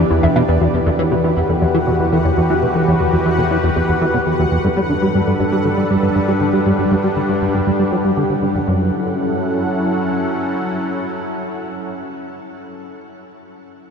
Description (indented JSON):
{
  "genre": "ambient, sequencer-driven space music",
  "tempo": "119 BPM",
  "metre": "4/4",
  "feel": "straight",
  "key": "F# phrygian",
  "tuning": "A4 = 439 Hz",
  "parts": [
    { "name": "sweeping resonant pad", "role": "sustained chords", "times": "0.0-12.3 s", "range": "E2 to F#5", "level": "-18 LUFS", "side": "equal", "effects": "chorus, shimmer reverb" },
    { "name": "warbly dusty pluck", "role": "arpeggios", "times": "0.0-8.9 s", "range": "E4 to F#5", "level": "-26 LUFS", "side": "left 3 dB", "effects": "none" },
    { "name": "plucky analog bass", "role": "riff", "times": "0.0-8.9 s", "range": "E2 to G3", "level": "-18 LUFS", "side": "equal", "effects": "wide subtle chorus, vintage 12-bit sampler grit, tape echo" },
    { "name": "bubbling stepped-filter texture", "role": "texture", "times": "0.0-8.7 s", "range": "D5 to F#5", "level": "-27 LUFS", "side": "left 2 dB", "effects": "chorus, built-in reverb, shimmer reverb" }
  ],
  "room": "wet huge ambient reverb, RT60 7.9 s",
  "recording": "dark, warm production",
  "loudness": "-14 LUFS",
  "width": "side -6 dB against mid",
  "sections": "0.6-8.7 A section; 8.7-12.7 B section",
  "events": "filter sweep on analog synth bass 0.6-8.7",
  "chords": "0.0 Em7; 0.6 Emadd9; 4.6 Gadd9; 8.7 F#m7",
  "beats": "0.10 | 0.61 1.11 1.62 2.12 | 2.63 3.13 3.63 4.14 | 4.64 5.15 5.65 6.16 | 6.66 7.16 7.67 8.17 | 8.68 9.18 9.69 10.19 | 10.69 11.20 11.70 12.21"
}